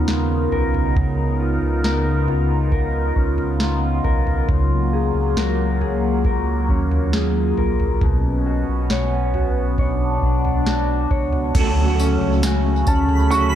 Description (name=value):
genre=dream pop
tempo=68 BPM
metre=4/4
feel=straight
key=F# major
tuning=A4 = 440 Hz
part: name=phased analog pad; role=sustained chords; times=0.0-13.6 s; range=B2 to A#4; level=-23 LUFS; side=right 1 dB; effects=phaser, chorus
part: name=mellow electric guitar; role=arpeggios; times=0.0-13.6 s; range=B2 to C#5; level=-25 LUFS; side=left 4 dB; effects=wide subtle chorus, analog delay
part: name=sub bass with octave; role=bass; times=0.0-13.6 s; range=A#1 to D#2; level=-21 LUFS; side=equal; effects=none
part: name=soft vintage rhythm box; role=drums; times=0.1-13.5 s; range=crash cymbal, kick drum, snare drum, tambourine, toms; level=-23 LUFS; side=right 1 dB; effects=overdrive
part: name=semi-hollow electric guitar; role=accompaniment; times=11.5-13.6 s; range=A3 to A4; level=-24 LUFS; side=right 4 dB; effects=tremolo, ensemble chorus, analog delay
part: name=twinkling granular texture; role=texture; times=13.0-13.6 s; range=B5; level=-30 LUFS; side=right 4 dB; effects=built-in reverb
part: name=felt-muted upright piano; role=melody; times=12.9-13.6 s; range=A5 to C#6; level=-20 LUFS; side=right 2 dB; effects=analog delay
room=light reverb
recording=echo-heavy mix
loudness=-17 LUFS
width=side -10 dB against mid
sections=0.0-11.5 A section; 11.5-13.6 B section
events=none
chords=0.0 C#13; 4.5 F#maj9/C#; 8.0 Bmadd9; 11.5 Dmaj7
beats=0.08 | 0.96 1.84 2.72 3.61 | 4.49 5.37 6.25 7.14 | 8.02 8.90 9.78 10.66 | 11.55 12.43 13.31